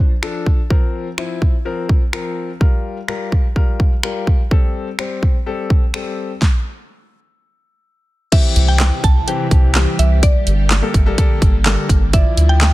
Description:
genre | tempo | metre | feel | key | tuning
dance-pop | 126 BPM | 4/4 | straight | G dorian | A4 = 440 Hz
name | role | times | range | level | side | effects
clear grand piano | accompaniment | 0.0-12.7 s | E3 to D5 | -24 LUFS | left 4 dB | sidechain pumping
pop drum kit | drums | 0.2-12.7 s | crash cymbal, finger snaps, handclaps, hi-hat, kick drum, snare drum | -15 LUFS | equal | soft clipping on snare
mallet-like synth pluck | melody | 8.3-12.7 s | D5 to A5 | -24 LUFS | right 1 dB | chorus, dub echo
string machine, violas | sustained chords | 8.3-12.7 s | C3 to G4 | -25 LUFS | right 1 dB | phaser, ensemble chorus, sidechain pumping
round analog bass | bass | 8.6-12.7 s | G1 to D2 | -14 LUFS | equal | sidechain pumping
room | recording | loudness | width
digital ambience | dense, heavily limited modern master | -14 LUFS | side -17 dB against mid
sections
0.0-8.3 A section; 8.3-12.7 B section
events
stop 6.4-8.3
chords
0.0 F6; 0.7 Bbsus2; 2.6 Gm7; 4.5 Am7; 6.4 N.C.; 8.3 C; 10.2 Gmadd9; 12.1 Dmadd9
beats
0.23 | 0.70 1.18 1.66 2.13 | 2.61 3.09 3.56 4.04 | 4.51 4.99 5.47 5.94 | 6.42 6.90 7.37 7.85 | 8.32 8.80 9.28 9.75 | 10.23 10.71 11.18 11.66 | 12.13 12.61

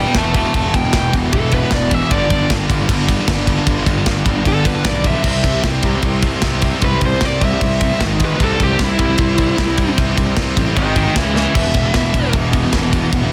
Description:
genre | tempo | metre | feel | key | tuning
heavy metal | 152 BPM | 4/4 | straight | unclear | A4 = 440 Hz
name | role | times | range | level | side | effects
high-gain lead guitar | melody | 0.0-12.3 s | E4 to A5 | -23 LUFS | equal | distortion, delay
distorted electric guitar | riff | 0.0-13.3 s | E2 to C#4 | -26 LUFS | equal | overdrive
tight distorted guitar | riff | 0.0-13.3 s | E2 to C#4 | -24 LUFS | equal | distortion
fuzz picked electric bass | bass | 0.0-13.3 s | E1 to C#2 | -22 LUFS | equal | overdrive
tight metal drum kit | drums | 0.1-13.2 s | crash cymbal, kick drum, ride cymbal, snare drum | -20 LUFS | equal | none
distorted electric guitar | riff | 11.5-13.3 s | E2 to E3 | -24 LUFS | equal | distortion
room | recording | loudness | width
small room ambience | dense, heavily limited modern master | -16 LUFS | mono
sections
0.0-13.3 A section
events
lead electric guitar solo 0.0-13.3; drum fill 11.4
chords
0.0 Em; 2.1 G5; 5.3 C; 8.0 G#5; 8.4 C; 10.8 G#5; 11.2 C#5; 11.6 E5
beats
0.15 | 0.54 0.94 1.33 1.72 | 2.12 2.51 2.90 3.29 | 3.69 4.08 4.47 4.86 | 5.25 5.65 6.04 6.43 | 6.83 7.22 7.61 8.01 | 8.40 8.80 9.19 9.59 | 9.98 10.37 10.77 11.16 | 11.56 11.95 12.35 12.74 | 13.13

